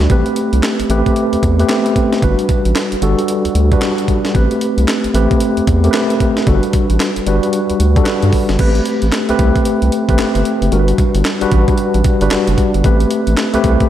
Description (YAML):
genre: R&B, new jack swing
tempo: 113 BPM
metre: 4/4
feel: swing 62% on 16ths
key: A dorian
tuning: A4 = 440 Hz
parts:
  - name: mellow tine electric piano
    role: accompaniment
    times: 0.0-13.9 s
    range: G3 to B4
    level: -15 LUFS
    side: equal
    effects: medium stereo tremolo
  - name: round analog bass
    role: bass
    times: 0.0-13.8 s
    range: F#1 to G2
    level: -14 LUFS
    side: equal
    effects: none
  - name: breakbeat sampler-style drum kit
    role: drums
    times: 0.0-13.9 s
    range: crash cymbal, handclaps, hi-hat, kick drum, snare drum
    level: -17 LUFS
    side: equal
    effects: none
room: moderate lush hall reverb, RT60 2.0 s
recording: dreamy mix soaked in reverb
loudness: -12 LUFS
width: side -11 dB against mid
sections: 0.0-8.6 A section; 8.6-13.9 B section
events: none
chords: 0.1 Am9; 2.2 Gmaj7; 4.3 Am9; 6.5 Gmaj7; 8.6 Am9; 10.7 Gmaj7; 12.8 Am9